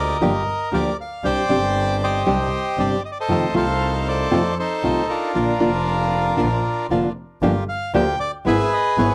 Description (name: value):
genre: tango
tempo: 117 BPM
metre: 4/4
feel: rubato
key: Bb major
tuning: A4 = 440 Hz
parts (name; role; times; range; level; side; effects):
- bandoneon; melody; 0.0-9.1 s; D4 to G5; -24 LUFS; equal; none
- bandoneon; stabs; 0.0-9.1 s; A3 to G#4; -31 LUFS; equal; none
- bright double bass; bass; 0.0-9.1 s; F1 to F2; -27 LUFS; equal; transformer saturation
- nylon-string guitar; accompaniment; 0.2-9.1 s; C3 to G4; -23 LUFS; equal; none
room: light reverb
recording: dry, gritty hardware recording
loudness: -21 LUFS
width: mono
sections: 0.0-7.4 A section; 7.4-9.1 B section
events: none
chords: 0.0 Gm7; 1.2 Csus2; 3.3 F7; 5.3 Bb; 7.4 Gm7; 8.5 E/G#